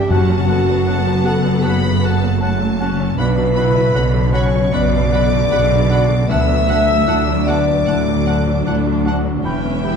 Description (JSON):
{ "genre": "cinematic, emotional film score for orchestra", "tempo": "77 BPM", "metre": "4/4", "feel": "rubato", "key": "B minor", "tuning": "A4 = 440 Hz", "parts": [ { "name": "warm symphonic violin section", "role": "melody", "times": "0.0-10.0 s", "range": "F#5 to B5", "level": "-31 LUFS", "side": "left 2 dB", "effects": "none" }, { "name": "dark clarinet", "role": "second line", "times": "0.0-10.0 s", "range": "E4 to E5", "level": "-26 LUFS", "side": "right 1 dB", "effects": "none" }, { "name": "rich symphonic violin section", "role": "second line", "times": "0.0-10.0 s", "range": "E5 to E6", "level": "-30 LUFS", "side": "equal", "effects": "none" }, { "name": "bright concert grand piano", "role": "accompaniment", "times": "0.0-10.0 s", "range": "B1 to B4", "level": "-24 LUFS", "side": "left 3 dB", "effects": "none" }, { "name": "warm symphonic viola section", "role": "accompaniment", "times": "0.0-10.0 s", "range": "D3 to E4", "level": "-25 LUFS", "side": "right 1 dB", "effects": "none" }, { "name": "warm French horn section", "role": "sustained chords", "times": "0.0-10.0 s", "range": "E4 to E5", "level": "-20 LUFS", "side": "left 3 dB", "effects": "none" }, { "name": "concert harp", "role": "arpeggios", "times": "0.0-10.0 s", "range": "E2 to B4", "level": "-22 LUFS", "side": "left 7 dB", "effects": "none" }, { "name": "rich studio cello section", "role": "bass", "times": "0.0-10.0 s", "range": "D2 to B2", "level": "-22 LUFS", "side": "right 3 dB", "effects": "none" }, { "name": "rich symphonic double bass section", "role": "bass", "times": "0.0-10.0 s", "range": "E1 to D2", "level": "-20 LUFS", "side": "right 4 dB", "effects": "none" }, { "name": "flute section", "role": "second line", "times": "0.1-9.9 s", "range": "A5 to B5", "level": "-32 LUFS", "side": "left 1 dB", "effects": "none" }, { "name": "warm oboe", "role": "second line", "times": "0.1-10.0 s", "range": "F#5 to G5", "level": "-31 LUFS", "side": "right 2 dB", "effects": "none" }, { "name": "timpani", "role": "percussion", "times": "0.1-1.2 s", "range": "F#2", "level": "-21 LUFS", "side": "right 2 dB", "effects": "none" } ], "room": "wet scoring stage reverb, RT60 1.6 s", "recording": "dark, warm production", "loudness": "-13 LUFS", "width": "side -6 dB against mid", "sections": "0.0-10.0 A section", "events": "none", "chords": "0.1 F#m; 3.2 Bmadd9; 6.3 Dadd9; 9.4 Em" }